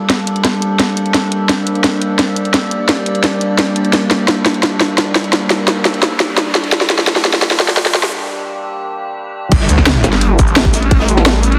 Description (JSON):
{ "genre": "dark technical drum and bass", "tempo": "172 BPM", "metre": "4/4", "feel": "straight", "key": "G minor", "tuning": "A4 = 439 Hz", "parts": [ { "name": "metallic inharmonic drone", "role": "sustained chords", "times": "0.0-11.6 s", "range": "G3 to D5", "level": "-21 LUFS", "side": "equal", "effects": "chorus, built-in reverb, sidechain pumping" }, { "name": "drum and bass drum kit", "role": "drums", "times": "0.1-11.6 s", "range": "crash cymbal, hi-hat, shaker, snare drum", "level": "-16 LUFS", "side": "equal", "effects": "none" }, { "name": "riser and impact", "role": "sound effects", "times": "5.3-10.9 s", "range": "none", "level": "-28 LUFS", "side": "equal", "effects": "none" }, { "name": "snarling distorted saw bass", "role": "bass", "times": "9.5-10.5 s", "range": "G1 to D2", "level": "-16 LUFS", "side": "equal", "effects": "distortion, overdrive, sidechain pumping" }, { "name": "crunchy breakbeat drum kit", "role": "drums", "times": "9.5-11.5 s", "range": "hi-hat, snare drum", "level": "-26 LUFS", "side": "equal", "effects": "high-pass filter on hats, high-pass filter on snare, high-pass filter on room" }, { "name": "electronic kick drum", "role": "drums", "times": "9.5-11.0 s", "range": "none", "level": "-14 LUFS", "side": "equal", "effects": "none" }, { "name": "vowel-sweep wobble bass", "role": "bass", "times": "10.0-11.6 s", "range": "G1 to A1", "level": "-15 LUFS", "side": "equal", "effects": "chorus" } ], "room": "moderate lush hall reverb, RT60 1.7 s", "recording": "heavily compressed radio sound, multiband compression, high-pass filter", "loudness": "-14 LUFS", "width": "mono", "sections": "0.0-9.5 A section; 9.5-11.6 B section", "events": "build-up 0.0-9.5; drum fill 0.0-8.1; filter sweep 0.0-9.5; break 8.1-9.5; drop 9.5-11.6; impact 9.5-10.9", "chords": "0.0 Gmadd9" }